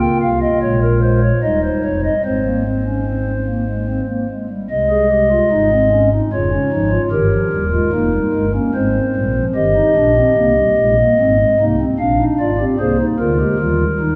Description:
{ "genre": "classical, baroque-style 4-part fugue for pipe organ", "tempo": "74 BPM", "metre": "3/4", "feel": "straight", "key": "Ab major, Eb major from 9.6 s", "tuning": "A4 = 440 Hz", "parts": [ { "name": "pipe organ, stopped flute", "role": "solo", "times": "0.0-14.2 s", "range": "Eb1 to G5", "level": "-16 LUFS", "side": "equal", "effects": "none" } ], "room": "wet church reverb, RT60 3.2 s", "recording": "none", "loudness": "-16 LUFS", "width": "mono", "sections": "0.0-4.7 A section; 4.7-9.6 B section; 9.6-14.2 C section", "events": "none", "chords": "0.0 Bbm; 1.4 Eb; 2.2 Ab; 4.7 Ab/C; 6.3 Db/F; 7.1 Eb; 8.7 Ab; 9.6 Eb/G; 11.2 Ab; 12.0 Bb7; 13.6 Eb", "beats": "0.61 1.43 | 2.24 3.06 3.88 | 4.70 5.52 6.32 | 7.13 7.94 8.75 | 9.56 10.37 11.19 | 11.99 12.80 13.60" }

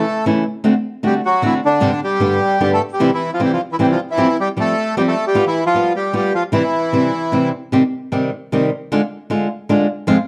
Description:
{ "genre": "tango", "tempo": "153 BPM", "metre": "3/4", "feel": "rubato", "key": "C major", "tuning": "A4 = 439 Hz", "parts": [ { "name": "bandoneon", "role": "melody", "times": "0.0-7.5 s", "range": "D3 to A4", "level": "-19 LUFS", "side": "equal", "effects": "none" }, { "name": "flamenco guitar", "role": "accompaniment", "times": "0.0-10.2 s", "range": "F2 to G4", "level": "-19 LUFS", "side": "equal", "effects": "none" } ], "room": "moderate large studio reverb, RT60 0.9 s", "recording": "none", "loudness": "-17 LUFS", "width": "mono", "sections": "0.0-7.7 A section; 7.7-10.3 B section", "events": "none", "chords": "0.0 A; 0.6 D7; 1.8 Gsus4; 2.2 G; 3.0 C; 4.2 Fsus2; 5.4 G7; 6.5 C; 7.7 Cm; 8.9 Ddim", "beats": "0.26 | 0.65 1.03 1.42 | 1.82 2.21 2.61 | 3.00 3.40 3.79 | 4.18 4.57 4.96 | 5.35 5.74 6.13 | 6.53 6.92 7.33 | 7.73 8.12 8.52 | 8.91 9.30 9.69 | 10.07" }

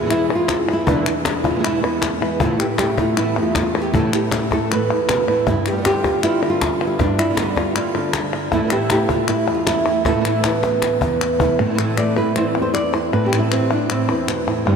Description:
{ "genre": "flamenco", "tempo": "157 BPM", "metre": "4/4", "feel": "straight", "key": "A minor", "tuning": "A4 = 439 Hz", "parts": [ { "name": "flamenco guitar", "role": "melody", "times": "0.0-14.8 s", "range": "E2 to D5", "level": "-19 LUFS", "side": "equal", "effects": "ping-pong delay" }, { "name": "flamenco guitar", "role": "stabs", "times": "0.0-14.8 s", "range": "E2 to G4", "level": "-22 LUFS", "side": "right 3 dB", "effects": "ensemble chorus" }, { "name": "palmas hand claps", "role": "percussion", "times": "0.1-14.8 s", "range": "none", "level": "-25 LUFS", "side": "left 7 dB", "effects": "none" }, { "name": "cajon", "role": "percussion", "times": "0.5-11.5 s", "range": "none", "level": "-26 LUFS", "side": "left 3 dB", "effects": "none" } ], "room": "wet huge ambient reverb, RT60 4.1 s", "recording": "dreamy mix soaked in reverb", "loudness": "-16 LUFS", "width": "side -6 dB against mid", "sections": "0.0-11.6 A section; 11.6-14.8 B section", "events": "drum fill 10.6-11.6; nylon-string guitar solo 11.6-14.8", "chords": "0.0 E; 2.4 Asus2; 5.5 G7; 8.5 Asus2; 11.6 Amadd9", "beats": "0.10 0.49 | 0.87 1.25 1.64 2.02 | 2.40 2.79 3.17 3.55 | 3.93 4.32 4.70 5.08 | 5.46 5.85 6.23 6.61 | 6.99 7.38 7.76 8.14 | 8.53 8.91 9.29 9.67 | 10.06 10.44 10.82 11.21 | 11.59 11.97 12.36 12.74 | 13.13 13.51 13.89 14.28 | 14.66" }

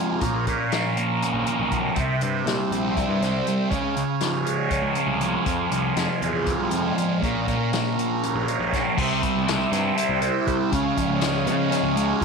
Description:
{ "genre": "psychedelic rock", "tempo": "240 BPM (eighths)", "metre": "7/8", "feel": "straight", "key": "C phrygian dominant", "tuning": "A4 = 440 Hz", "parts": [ { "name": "overdriven combo organ", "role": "sustained chords", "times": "0.0-12.2 s", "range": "C4 to F5", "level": "-29 LUFS", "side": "right 12 dB", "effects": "none" }, { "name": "fuzz guitar", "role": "riff", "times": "0.0-12.2 s", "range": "F2 to E4", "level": "-23 LUFS", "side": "equal", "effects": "distortion, phaser" }, { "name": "fuzz picked electric bass", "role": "bass", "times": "0.2-12.2 s", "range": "Bb1 to Db3", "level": "-30 LUFS", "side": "left 1 dB", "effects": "overdrive" }, { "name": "vintage drum kit", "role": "drums", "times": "0.2-12.2 s", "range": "crash cymbal, hi-hat, kick drum, snare drum", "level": "-30 LUFS", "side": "left 4 dB", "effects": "none" } ], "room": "light reverb, studio reverb", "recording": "1960s-style stereo", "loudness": "-21 LUFS", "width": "side -5 dB against mid", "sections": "0.0-9.0 A section; 9.0-12.2 B section", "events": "none", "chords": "0.2 Bbm; 2.0 C; 3.7 Db; 5.5 Fm; 7.2 Bbm; 9.0 C; 10.7 Db", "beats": "| 0.22 0.47 0.72 0.97 1.22 1.47 1.72 | 1.97 2.22 2.47 2.72 2.96 3.21 3.46 | 3.71 3.96 4.21 4.46 4.71 4.96 5.21 | 5.46 5.71 5.97 6.22 6.47 6.72 6.97 | 7.22 7.47 7.72 7.97 8.22 8.47 8.72 | 8.97 9.22 9.47 9.72 9.97 10.22 10.47 | 10.72 10.97 11.22 11.47 11.72 11.97 12.21" }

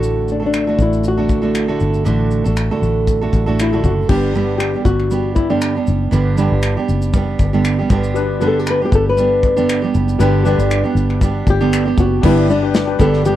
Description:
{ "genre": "acoustic pop", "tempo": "118 BPM", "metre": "4/4", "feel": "swing 55% on 16ths", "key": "G major", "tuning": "A4 = 440 Hz", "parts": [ { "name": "flamenco guitar", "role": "melody", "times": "0.0-13.3 s", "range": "D4 to B4", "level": "-18 LUFS", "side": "left 4 dB", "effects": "none" }, { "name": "fingerpicked steel-string acoustic guitar", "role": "accompaniment", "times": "0.0-13.4 s", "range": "G2 to A4", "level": "-18 LUFS", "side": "right 4 dB", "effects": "none" }, { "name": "fingered electric bass", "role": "bass", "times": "0.0-13.4 s", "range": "F#1 to A1", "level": "-18 LUFS", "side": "left 1 dB", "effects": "none" }, { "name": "modern studio drum kit", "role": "drums", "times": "0.0-13.4 s", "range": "crash cymbal, finger snaps, kick drum, shaker, snare drum", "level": "-19 LUFS", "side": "left 1 dB", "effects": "none" }, { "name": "clear upright piano", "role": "accompaniment", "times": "8.1-13.4 s", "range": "G3 to B4", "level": "-23 LUFS", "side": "left 9 dB", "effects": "none" }, { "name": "mellow tonewheel organ", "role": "sustained chords", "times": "12.2-13.4 s", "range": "B4 to D6", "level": "-27 LUFS", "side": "left 4 dB", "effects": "fast rotary speaker" } ], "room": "studio ambience", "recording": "none", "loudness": "-13 LUFS", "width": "side -13 dB against mid", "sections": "0.0-4.1 A section; 4.1-12.2 B section; 12.2-13.4 C section", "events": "none", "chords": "0.0 D; 4.1 G", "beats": "| 0.02 0.53 1.04 1.55 | 2.06 2.57 3.08 3.59 | 4.09 4.60 5.11 5.62 | 6.13 6.64 7.14 7.65 | 8.16 8.67 9.18 9.69 | 10.20 10.71 11.21 11.72 | 12.23 12.74 13.25" }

